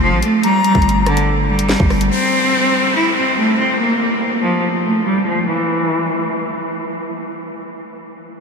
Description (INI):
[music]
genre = hip hop, drill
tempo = 143 BPM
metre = 4/4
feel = half-time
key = unclear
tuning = A4 = 441 Hz
[part]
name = bright cello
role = melody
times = 0.0-6.7 s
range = D3 to E4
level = -16 LUFS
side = equal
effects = low-pass filter, ping-pong delay
[part]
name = distorted 808-style bass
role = bass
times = 0.0-2.1 s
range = F1 to A1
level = -19 LUFS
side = equal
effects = distortion
[part]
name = drill drum kit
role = drums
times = 0.2-2.1 s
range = handclaps, hi-hat, kick drum, rim click, snare drum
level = -23 LUFS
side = equal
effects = none
[part]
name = breathy jazz flute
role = second line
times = 0.4-1.2 s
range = Bb5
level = -23 LUFS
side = left 4 dB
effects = ping-pong delay
[part]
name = downlifter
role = sound effects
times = 2.1-5.5 s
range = none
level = -26 LUFS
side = equal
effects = none
[sound]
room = wet huge ambient reverb, RT60 7.2 s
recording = dreamy mix soaked in reverb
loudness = -14 LUFS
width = side -5 dB against mid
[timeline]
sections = 0.0-2.1 A section; 2.1-5.5 B section; 5.5-8.4 C section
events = filter sweep on cello 2.1-5.5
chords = 0.4 Gm; 2.1 N.C.